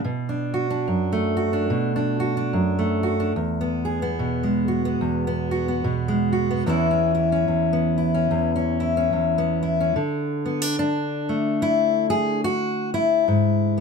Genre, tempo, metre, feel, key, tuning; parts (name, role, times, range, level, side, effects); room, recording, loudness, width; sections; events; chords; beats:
folk, solo fingerstyle acoustic guitar; 72 BPM; 4/4; swing 59% on 8ths; A4 = 439 Hz
fingerpicked steel-string acoustic guitar; solo; 0.0-13.8 s; E2 to G#4; -20 LUFS; equal
light reverb; close, detailed microphones; -20 LUFS; side -5 dB against mid
0.0-10.0 A section; 10.0-13.8 B section
0.0 Bm7; 3.3 Eadd9; 6.7 C#m7/E; 10.0 D5; 13.3 G#(b5, no3)
| 0.03 0.86 1.69 2.52 | 3.35 4.18 5.01 5.84 | 6.67 7.49 8.32 9.15 | 9.98 10.81 11.63 12.46 | 13.29